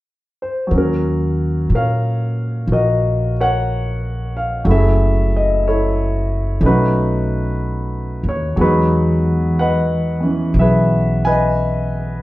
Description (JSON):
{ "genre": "jazz ballad", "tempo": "61 BPM", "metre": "4/4", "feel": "swing 66% on 8ths", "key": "unclear", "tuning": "A4 = 438 Hz", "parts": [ { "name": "warm concert grand piano", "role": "accompaniment", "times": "0.4-12.2 s", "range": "E3 to G#5", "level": "-18 LUFS", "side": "equal", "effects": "none" }, { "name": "upright bass", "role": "bass", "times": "0.7-12.2 s", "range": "Gb1 to Bb2", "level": "-18 LUFS", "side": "equal", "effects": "none" } ], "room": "wet studio reverb, RT60 0.8 s", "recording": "heard from further back in the room", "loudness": "-15 LUFS", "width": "side -17 dB against mid", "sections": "0.7-12.2 A section", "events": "none", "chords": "0.0 N.C.; 0.7 Ebm7; 4.7 Gbm9; 6.6 B7; 8.6 Emaj9" }